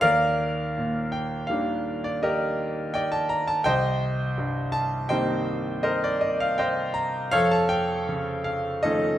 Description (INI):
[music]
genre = classical, impressionist solo piano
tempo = 78-85 BPM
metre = 5/4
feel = rubato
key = unclear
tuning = A4 = 438 Hz
[part]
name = bright concert grand piano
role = solo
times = 0.0-9.2 s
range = C2 to Bb5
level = -23 LUFS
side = equal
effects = none
[sound]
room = wet recital hall reverb, RT60 1.3 s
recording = none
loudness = -23 LUFS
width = side -12 dB against mid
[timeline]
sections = 0.0-9.2 A section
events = none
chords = 0.0 Ebmaj7; 3.7 Cm7; 7.3 Faug7